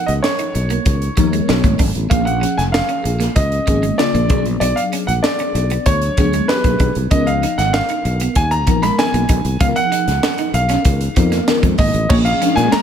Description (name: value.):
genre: polished 1980s jazz-funk pop.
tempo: 96 BPM.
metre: 4/4.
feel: straight.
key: unclear.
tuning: A4 = 441 Hz.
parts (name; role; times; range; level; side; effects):
warm concert grand piano; melody; 0.0-12.8 s; B4 to B5; -20 LUFS; equal; none.
bell-like FM electric piano; accompaniment; 0.0-12.8 s; C#3 to A#4; -22 LUFS; left 4 dB; phaser, ensemble chorus.
electric guitar at the edge of break-up; riff; 0.0-12.8 s; G#3 to D#4; -24 LUFS; right 7 dB; tube saturation, lush chorus.
sustaining fretless electric bass; bass; 0.1-12.8 s; E#1 to A#2; -19 LUFS; equal; none.
crisp fusion drum kit; drums; 0.1-12.8 s; crash cymbal, hi-hat, kick drum, snare drum; -19 LUFS; equal; gated reverb.
string machine, violins; sustained chords; 12.1-12.8 s; G#3 to C#4; -22 LUFS; left 1 dB; ensemble chorus.
room: small room ambience.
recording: none.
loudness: -14 LUFS.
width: side -8 dB against mid.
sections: 0.0-12.1 A section.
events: none.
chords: 0.0 C#13; 1.5 Bm7; 2.1 A#m7; 4.3 Bm6; 7.1 C#13; 12.1 A#m7.